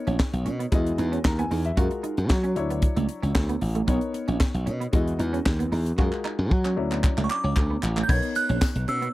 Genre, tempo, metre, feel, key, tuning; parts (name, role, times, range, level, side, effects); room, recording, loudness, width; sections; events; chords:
early-eighties boogie funk; 114 BPM; 4/4; straight; B major; A4 = 440 Hz
warm baby grand piano; accompaniment; 0.0-9.1 s; F#3 to A#5; -32 LUFS; left 4 dB
electric guitar at the edge of break-up; riff; 0.1-9.1 s; A3 to F#4; -31 LUFS; right 6 dB; ensemble chorus
glassy slap bass; bass; 0.1-9.1 s; A1 to F#3; -25 LUFS; equal
tight funk drum kit; drums; 0.1-9.1 s; crash cymbal, handclaps, hi-hat, kick drum, snare drum; -24 LUFS; equal
delicate synth tine bell; melody; 7.2-9.1 s; C#6 to G#6; -28 LUFS; right 3 dB; chorus, slapback echo
tambourine; percussion; 8.1-8.7 s; -42 LUFS; left 9 dB
little or no reverb; dry, close 1970s-style studio recording; -22 LUFS; side -17 dB against mid
0.0-8.1 A section; 8.1-9.1 B section
drum fill 6.0-8.1
0.0 Bmaj9; 0.7 Emaj9; 1.8 F#maj9; 2.6 Dmaj9; 3.9 Bmaj9; 4.9 Emaj9; 6.0 F#maj9; 6.8 Dmaj9; 8.1 Bmaj9